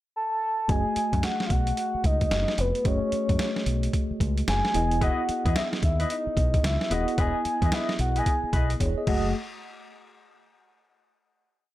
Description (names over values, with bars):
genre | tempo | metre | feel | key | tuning
R&B, new jack swing | 111 BPM | 4/4 | swing 63% on 16ths | F# dorian | A4 = 440 Hz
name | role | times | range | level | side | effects
soft octave-layered synth lead | melody | 0.2-9.3 s | B4 to A5 | -28 LUFS | left 1 dB | chorus, tremolo
mellow tine electric piano | accompaniment | 0.7-9.4 s | A3 to D#5 | -31 LUFS | right 1 dB | medium stereo tremolo
deep dub fingered electric bass | bass | 0.7-9.3 s | D#1 to F#2 | -27 LUFS | equal | none
boom bap sampler-style drum kit | drums | 0.7-9.2 s | crash cymbal, hi-hat, kick drum, snare drum | -27 LUFS | equal | none
mellow horn section | stabs | 5.0-9.3 s | E4 to D#5 | -34 LUFS | left 4 dB | none
room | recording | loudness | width
digital ambience | none | -23 LUFS | side -15 dB against mid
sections
0.0-0.7 pickup bar; 0.7-9.3 verse; 9.3-11.5 final hit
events
drum fill 8.8-9.3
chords
0.0 N.C.; 0.7 F#m69; 4.7 Emaj7; 9.1 F#m69; 9.3 N.C.